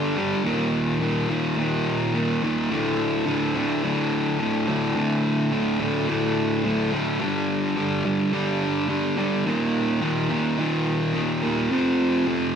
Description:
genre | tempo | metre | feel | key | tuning
rock | 107 BPM | 4/4 | straight | D phrygian | A4 = 438 Hz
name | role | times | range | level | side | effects
fuzz guitar | solo | 0.0-12.6 s | D2 to G3 | -21 LUFS | equal | distortion, slapback echo, analog delay
room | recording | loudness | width
light reverb, digital ambience | live gig heard through the venue's PA, club reverb | -21 LUFS | side -7 dB against mid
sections
0.0-5.0 A section; 5.0-12.6 B section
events
none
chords
0.4 Eb5; 2.7 D5; 7.2 G5; 9.5 Eb5; 11.7 F5

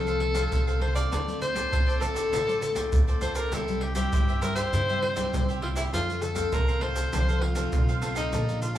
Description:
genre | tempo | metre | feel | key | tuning
samba and choro | 100 BPM | 4/4 | straight | unclear | A4 = 440 Hz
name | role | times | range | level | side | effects
breathy alto saxophone | melody | 0.0-8.8 s | Eb4 to D5 | -29 LUFS | left 2 dB | none
cavaquinho | accompaniment | 0.0-8.8 s | E4 to A5 | -35 LUFS | right 3 dB | none
nylon-string guitar | accompaniment | 0.0-8.8 s | A2 to F4 | -33 LUFS | left 2 dB | none
upright bass | bass | 0.0-8.8 s | A1 to G2 | -30 LUFS | equal | none
egg shaker, pandeiro and surdo | percussion | 0.1-8.8 s | none | -29 LUFS | equal | none
room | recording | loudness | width
moderate studio reverb, RT60 0.7 s | band playing live in one room, small room ambience | -24 LUFS | side -12 dB against mid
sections
0.0-8.8 A section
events
none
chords
0.0 F; 1.1 Dm7; 3.5 C; 5.9 F

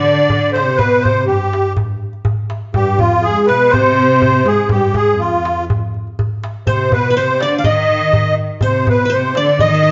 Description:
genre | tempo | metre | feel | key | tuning
Arabic maqam ensemble | 123 BPM | 4/4 | straight | C maqam nahawand | A4 = 439 Hz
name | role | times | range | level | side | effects
musette accordion | melody | 0.0-9.9 s | F4 to F5 | -16 LUFS | equal | none
rich studio cello section | second line | 0.0-9.9 s | F2 to Eb3 | -21 LUFS | equal | none
darbuka | percussion | 0.2-9.7 s | none | -21 LUFS | equal | none
qanun | second line | 6.7-9.9 s | B4 to Eb5 | -27 LUFS | equal | none
room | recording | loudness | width
wet stone room reverb, RT60 1.3 s | band playing live in one room, nothing above 7.5 kHz | -15 LUFS | mono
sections
0.0-9.9 A section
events
none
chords
none

